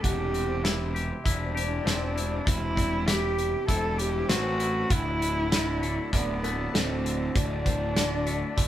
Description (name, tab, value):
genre	post-rock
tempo	98 BPM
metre	4/4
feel	straight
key	unclear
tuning	A4 = 437 Hz
part	muted cello	melody	0.0-8.7 s	B3 to A4	-30 LUFS	equal	none
part	phased analog pad	sustained chords	0.0-8.7 s	G3 to D6	-42 LUFS	right 2 dB	none
part	felt-muted upright piano	arpeggios	0.0-8.7 s	A4 to F#5	-41 LUFS	right 6 dB	none
part	twangy electric guitar	arpeggios	0.0-8.7 s	D2 to G4	-35 LUFS	left 4 dB	none
part	fuzz picked electric bass	bass	0.0-8.7 s	D1 to A1	-30 LUFS	right 1 dB	overdrive
part	loose indie drum kit	drums	0.0-8.7 s	hi-hat, kick drum, snare drum	-28 LUFS	equal	none
room	light reverb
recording	band playing live in one room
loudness	-24 LUFS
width	side -12 dB against mid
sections	0.0-8.7 A section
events	none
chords	0.0 C/E; 4.9 Dadd9